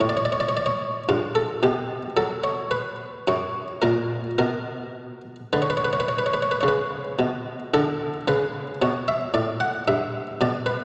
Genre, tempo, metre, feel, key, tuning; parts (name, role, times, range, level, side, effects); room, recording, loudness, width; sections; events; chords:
classical, baroque-style suite movement for harpsichord; 52-57 BPM; 3/4; rubato; B minor, D major from 7.8 s; A4 = 441 Hz
buff-stop harpsichord; solo; 0.0-10.8 s; F#2 to F#5; -25 LUFS; equal
wet concert hall reverb, RT60 2.5 s; -25 LUFS; mono
0.0-7.8 A section; 7.8-10.8 A section
0.0 N.C.; 1.1 G9; 2.2 N.C.; 3.3 F#; 4.4 Bm; 7.8 D5; 9.9 G